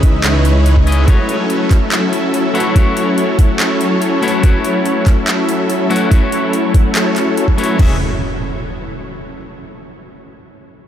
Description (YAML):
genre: future bass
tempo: 143 BPM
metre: 4/4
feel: half-time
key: unclear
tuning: A4 = 440 Hz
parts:
  - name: clean electric guitar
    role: accompaniment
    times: 0.0-8.0 s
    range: C#3 to E5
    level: -21 LUFS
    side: left 4 dB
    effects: sidechain pumping, analog delay
  - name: supersaw chords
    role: riff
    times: 0.0-7.9 s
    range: F#3 to F#5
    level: -16 LUFS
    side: equal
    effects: sidechain pumping, low-pass filter, analog delay
  - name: wide detuned saw bass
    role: bass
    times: 0.0-1.1, 7.8-8.0 s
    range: E1 to C#2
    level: -13 LUFS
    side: equal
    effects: chorus, sidechain pumping
  - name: electronic kick drum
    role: drums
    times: 0.0-7.9 s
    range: none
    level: -11 LUFS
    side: equal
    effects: none
  - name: trap drum kit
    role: drums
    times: 0.0-7.9 s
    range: crash cymbal, handclaps, hi-hat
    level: -23 LUFS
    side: equal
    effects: overdrive
  - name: impact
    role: sound effects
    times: 7.8-9.5 s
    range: none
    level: -24 LUFS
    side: equal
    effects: none
room: moderate huge ambient reverb, RT60 7.1 s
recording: dreamy mix soaked in reverb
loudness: -11 LUFS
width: side -10 dB against mid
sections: 0.0-7.8 A section; 7.8-9.5 B section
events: none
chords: 0.0 C#m9; 1.1 A6; 7.8 E69